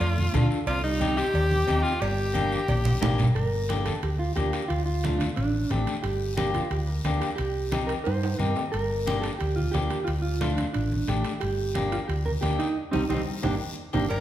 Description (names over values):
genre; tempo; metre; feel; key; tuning
latin, cumbia; 179 BPM; 4/4; straight; G minor; A4 = 440 Hz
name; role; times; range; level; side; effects
edgy alto saxophone; melody; 0.0-3.2, 14.1-14.2 s; Eb4 to Bb4; -28 LUFS; left 1 dB; none
mellow electric guitar; second line; 0.0-14.1 s; G3 to C5; -31 LUFS; right 4 dB; none
hollow-body short-scale fingered electric bass; bass; 0.0-14.2 s; G1 to G2; -28 LUFS; equal; none
cowbell and timbales; percussion; 0.0-14.2 s; none; -38 LUFS; right 4 dB; none
guiro; percussion; 0.0-14.2 s; none; -41 LUFS; left 4 dB; none
congas; percussion; 0.2-14.0 s; none; -30 LUFS; right 1 dB; none
clean electric guitar; accompaniment; 0.3-14.0 s; G3 to A4; -31 LUFS; left 4 dB; spring reverb
room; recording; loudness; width
wet large studio reverb, RT60 1.1 s; heard from further back in the room; -24 LUFS; side -12 dB against mid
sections
0.0-3.4 A section; 3.4-14.1 B section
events
drum fill 2.7-3.4, 8.1-8.7, 13.3-14.1; clean electric guitar solo 3.4-14.1; band accent 12.8-14.1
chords
0.0 Dm; 0.7 Cm; 2.0 Gm; 4.7 Dm; 6.0 Gm; 7.4 Cm; 8.7 Gm; 10.1 Dm; 11.4 Gm; 12.8 Cm; 13.4 Gm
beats
0.02 0.35 | 0.68 1.02 1.35 1.69 | 2.02 2.36 2.69 3.03 | 3.36 3.70 4.03 4.37 | 4.70 5.04 5.38 5.71 | 6.05 6.38 6.72 7.05 | 7.39 7.73 8.06 8.40 | 8.73 9.07 9.40 9.74 | 10.08 10.41 10.75 11.08 | 11.42 11.76 12.09 12.43 | 12.76 13.10 13.44 13.77 | 14.11